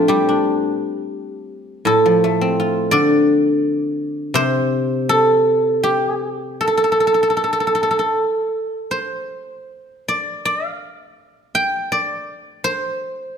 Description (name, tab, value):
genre	chinese traditional, Chinese solo plucked strings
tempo	76-87 BPM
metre	4/4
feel	rubato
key	unclear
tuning	A4 = 440 Hz
part	guzheng	solo	0.0-13.4 s	A2 to G5	-16 LUFS	equal	none
room	moderate scoring stage reverb, RT60 1.7 s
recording	none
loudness	-16 LUFS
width	side -7 dB against mid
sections	0.0-13.4 A section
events	none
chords	none